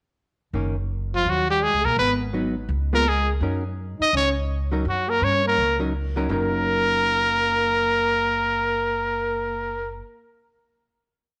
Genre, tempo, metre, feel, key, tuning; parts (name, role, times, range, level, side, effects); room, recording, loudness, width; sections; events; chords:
jazz, small-group swing and bop; 167 BPM; 4/4; swing 63% on 8ths; F# major; A4 = 440 Hz
hollow-body jazz guitar; accompaniment; 0.5-10.1 s; D#3 to A#4; -31 LUFS; equal
upright bass; bass; 0.5-10.0 s; F#1 to G2; -30 LUFS; equal
mellow trombone; second line; 1.1-9.9 s; E#3 to D#4; -33 LUFS; equal
brilliant trumpet; melody; 1.2-9.9 s; E#4 to D#5; -24 LUFS; equal; slapback echo
moderate echo chamber reverb, RT60 1.6 s, studio reverb; -23 LUFS; mono
0.5-6.3 A section; 6.3-9.2 final chord
0.5 F#6; 1.3 D#5; 2.0 G#m7; 2.7 C#7; 3.4 F#6